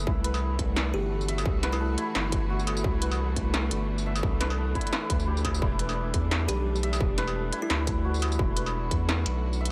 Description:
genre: half-time drum and bass.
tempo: 173 BPM.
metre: 4/4.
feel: swing 56% on 16ths, half-time.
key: unclear.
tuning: A4 = 440 Hz.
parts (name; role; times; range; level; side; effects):
rich studio string section; sustained chords; 0.0-9.7 s; E3 to F#4; -38 LUFS; equal; sidechain pumping.
santur; arpeggios; 0.0-9.7 s; E4 to E5; -37 LUFS; equal; dub echo.
saturated sub bass; bass; 0.0-9.7 s; E1 to E2; -31 LUFS; equal; tube saturation.
electronic kick drum; drums; 0.1-9.0 s; none; -32 LUFS; equal; distortion, small room ambience.
industrial drum kit; drums; 0.2-9.7 s; hi-hat, snare drum, struck metal, tambourine; -34 LUFS; equal; small room ambience.
kalimba; melody; 0.9-2.1, 6.5-8.0 s; E4 to G4; -39 LUFS; equal; dub echo.
room: light reverb.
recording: none.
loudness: -28 LUFS.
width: mono.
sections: 0.0-9.7 A section.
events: none.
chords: 0.1 Cadd9; 5.6 Em.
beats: | 0.07 0.42 0.76 1.11 | 1.46 1.80 2.15 2.50 | 2.85 3.19 3.54 3.89 | 4.23 4.58 4.93 5.27 | 5.62 5.97 6.31 6.66 | 7.01 7.35 7.70 8.05 | 8.39 8.74 9.09 9.44.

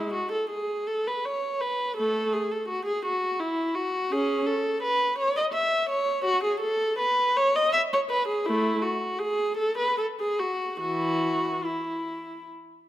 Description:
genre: classical, baroque-style suite movement for unaccompanied viola.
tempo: 70-84 BPM.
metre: 3/4.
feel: rubato.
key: A major, E major from 4.1 s.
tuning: A4 = 439 Hz.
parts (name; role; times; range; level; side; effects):
dark viola; solo; 0.0-12.5 s; E3 to E5; -24 LUFS; equal; none.
room: moderate recital hall reverb, RT60 1.9 s.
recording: none.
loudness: -24 LUFS.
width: side -13 dB against mid.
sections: 0.0-12.9 A section.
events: none.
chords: none.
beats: 0.50 1.23 | 1.97 2.69 3.41 | 4.13 4.85 5.58 | 6.30 7.02 7.76 | 8.47 9.21 9.98 | 10.81 11.65.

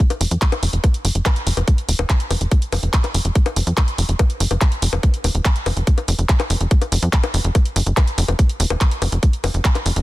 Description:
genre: psychedelic trance.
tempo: 143 BPM.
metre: 4/4.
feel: straight.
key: unclear.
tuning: A4 = 440 Hz.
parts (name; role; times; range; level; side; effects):
drum and bass drum kit; drums; 0.0-10.0 s; bongos, handclaps, hi-hat; -23 LUFS; left 2 dB; none.
electronic kick drum; drums; 0.0-9.7 s; none; -15 LUFS; equal; none.
tight sequencer bass; bass; 0.2-10.0 s; Eb1 to F2; -18 LUFS; equal; none.
room: little or no reverb.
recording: dense, heavily limited modern master.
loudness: -16 LUFS.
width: side -17 dB against mid.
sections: 0.0-10.0 A section.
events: none.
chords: none.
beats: | 0.00 0.42 0.84 1.26 | 1.68 2.10 2.52 2.94 | 3.35 3.77 4.19 4.61 | 5.03 5.45 5.87 6.29 | 6.71 7.13 7.55 7.97 | 8.39 8.81 9.23 9.65.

